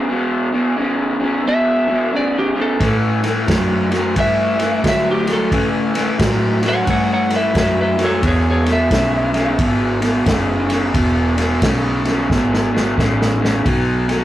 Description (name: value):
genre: electric blues shuffle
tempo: 88 BPM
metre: 4/4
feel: swing 64% on 8ths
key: unclear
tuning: A4 = 440 Hz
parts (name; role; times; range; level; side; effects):
- raw garage guitar; riff; 0.0-14.2 s; E2 to F#3; -17 LUFS; equal; overdrive
- lightly driven lead guitar; melody; 1.5-10.7 s; G4 to F#5; -20 LUFS; equal; none
- vintage muted fingered electric bass; bass; 2.8-14.2 s; E1 to D3; -22 LUFS; equal; none
- vintage drum kit; drums; 2.8-14.2 s; kick drum, ride cymbal, snare drum; -20 LUFS; equal; none
room: moderate studio reverb, RT60 0.5 s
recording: rough rehearsal-room recording, tube saturation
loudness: -14 LUFS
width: side -13 dB against mid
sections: 0.0-14.2 A section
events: drum fill 12.3-13.7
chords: 0.0 E5; 2.8 A7; 8.2 E; 13.7 B5